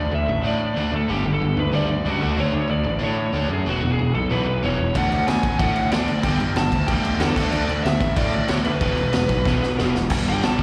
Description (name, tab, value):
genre	punk rock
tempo	186 BPM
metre	4/4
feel	straight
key	unclear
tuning	A4 = 444 Hz
part	biting lead guitar	melody	0.0-10.6 s	F#4 to A5	-28 LUFS	equal	overdrive, slapback echo, digital delay
part	cranked stack guitar	riff	0.0-10.6 s	E2 to D4	-31 LUFS	equal	overdrive, slapback echo
part	overdriven semi-hollow guitar	riff	0.0-10.6 s	E2 to D4	-31 LUFS	equal	slapback echo
part	fuzz picked electric bass	bass	0.0-10.6 s	E1 to A2	-25 LUFS	equal	overdrive
part	raw garage drum kit	drums	5.0-10.6 s	crash cymbal, kick drum, snare drum	-26 LUFS	equal	none
room	studio reverb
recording	live gig heard through the venue's PA, recital hall reverb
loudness	-21 LUFS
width	mono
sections	0.0-10.1 A section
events	drum fill 9.5-10.1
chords	0.0 D5; 1.1 G5; 2.2 D5; 3.7 E5; 4.9 D; 6.2 G5; 7.4 D5; 8.8 E5; 10.1 G5